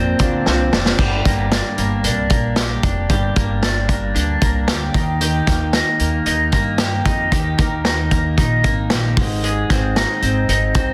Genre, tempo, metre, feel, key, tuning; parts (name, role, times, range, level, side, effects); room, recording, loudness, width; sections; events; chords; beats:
jangly indie pop; 114 BPM; 4/4; straight; A4 = 440 Hz
fingerpicked steel-string acoustic guitar; accompaniment; 0.0-1.0 s; D3 to F4; -26 LUFS; equal
twelve-string electric guitar; arpeggios; 0.0-10.9 s; G2 to Bb4; -22 LUFS; equal; spring reverb, tape echo
upright bass; bass; 0.0-10.9 s; F1 to G2; -24 LUFS; equal
vintage drum kit; drums; 0.2-10.9 s; crash cymbal, hi-hat, kick drum, snare drum; -21 LUFS; equal
light reverb, studio reverb; dense, heavily limited modern master; -18 LUFS; mono
1.0-10.9 A section
drum fill 0.5-1.0
0.0 Bbadd9; 1.0 Gm; 4.9 Eb; 9.2 Ab
0.47 | 0.99 1.52 2.05 2.58 | 3.10 3.63 4.16 4.68 | 5.21 5.74 6.27 6.79 | 7.32 7.85 8.38 8.90 | 9.43 9.96 10.48